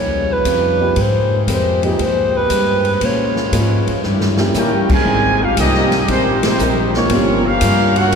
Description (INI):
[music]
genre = jazz, big band swing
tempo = 117 BPM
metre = 4/4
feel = swing 68% on 8ths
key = Ab major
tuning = A4 = 440 Hz
[part]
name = breathy alto saxophone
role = melody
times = 0.0-3.9 s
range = Ab4 to Db5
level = -20 LUFS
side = right 1 dB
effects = none
[part]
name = picked steel-string acoustic guitar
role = accompaniment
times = 0.0-8.2 s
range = Gb2 to Bb4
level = -24 LUFS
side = left 3 dB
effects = none
[part]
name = warm trombone section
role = sustained chords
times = 0.0-8.2 s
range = Bb2 to Ab4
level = -26 LUFS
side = equal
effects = none
[part]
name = upright bass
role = bass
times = 0.0-8.2 s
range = G1 to Bb2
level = -19 LUFS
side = left 1 dB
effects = none
[part]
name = swinging big-band drum kit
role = drums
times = 0.5-8.2 s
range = crash cymbal, hi-hat, kick drum, ride cymbal, snare drum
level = -22 LUFS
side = left 1 dB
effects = none
[part]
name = warm baby grand piano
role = accompaniment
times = 0.8-7.4 s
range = F3 to Bb4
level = -24 LUFS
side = equal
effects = none
[part]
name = warm trumpet section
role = melody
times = 4.6-8.2 s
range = Bb3 to Ab5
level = -18 LUFS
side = equal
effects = none
[part]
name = warm trombone section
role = second line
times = 4.6-8.2 s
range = C3 to G4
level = -21 LUFS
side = right 2 dB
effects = none
[sound]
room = wet cathedral reverb, RT60 6.9 s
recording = recorded in a church or concert hall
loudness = -13 LUFS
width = side -6 dB against mid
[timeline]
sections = 0.0-5.1 A section; 5.1-8.2 B section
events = alto saxophone solo 0.0-5.1; drum fill 4.0-4.6; band accent 6.3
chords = 0.0 Eb9; 1.0 Abmaj9; 3.0 Bbm7; 4.0 Eb7b9; 5.1 Abmaj9; 7.1 Gm7b5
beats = 0.46 | 0.97 1.48 1.99 2.50 | 3.02 3.53 4.04 4.55 | 5.06 5.57 6.08 6.59 | 7.11 7.62 8.13